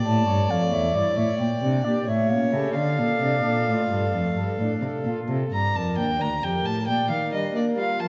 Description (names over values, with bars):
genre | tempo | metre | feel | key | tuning
classical, baroque-style sonata movement with continuo | 88 BPM (dotted quarters) | 12/8 | straight | D minor | A4 = 442 Hz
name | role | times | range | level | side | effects
dark violin | second line | 0.0-8.1 s | C#5 to Bb5 | -30 LUFS | equal | none
pipe organ, principal | accompaniment | 0.0-8.1 s | D2 to D5 | -30 LUFS | equal | none
dark cello | bass | 0.0-8.1 s | D2 to Bb3 | -28 LUFS | equal | none
baroque flute | melody | 0.1-8.1 s | Bb4 to A5 | -32 LUFS | equal | none
room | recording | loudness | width
wet scoring stage reverb, RT60 1.7 s | nothing above 7.7 kHz | -24 LUFS | mono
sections
0.0-5.5 A section; 5.5-8.1 A section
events
none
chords
0.1 A; 1.4 Gm/Bb; 2.1 A7; 2.8 Dm; 5.5 Gm; 6.9 Bb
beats
| 0.05 0.72 1.39 2.08 | 2.76 3.45 4.14 4.83 | 5.52 6.20 6.88 7.55